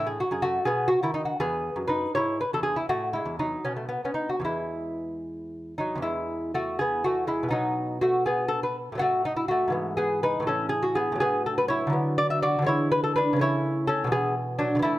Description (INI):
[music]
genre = classical, baroque-style dance for lute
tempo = 75-85 BPM (dotted quarters)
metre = 6/8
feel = rubato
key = E major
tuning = A4 = 440 Hz
[part]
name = lute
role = solo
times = 0.0-15.0 s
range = E2 to E5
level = -24 LUFS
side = equal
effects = none
[sound]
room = light reverb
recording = close, detailed microphones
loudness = -24 LUFS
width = side -16 dB against mid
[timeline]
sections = 0.0-6.0 A section; 6.0-15.0 B section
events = none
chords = 0.0 F#m/A; 0.7 B; 1.4 E; 2.1 E/G#; 2.9 A5; 3.6 N.C.; 4.4 E; 7.5 B; 9.0 N.C.; 9.7 E/G#; 10.5 A; 11.2 B5/A; 11.9 Bm/D; 12.7 E7/D; 13.4 A/C#; 14.1 E5/B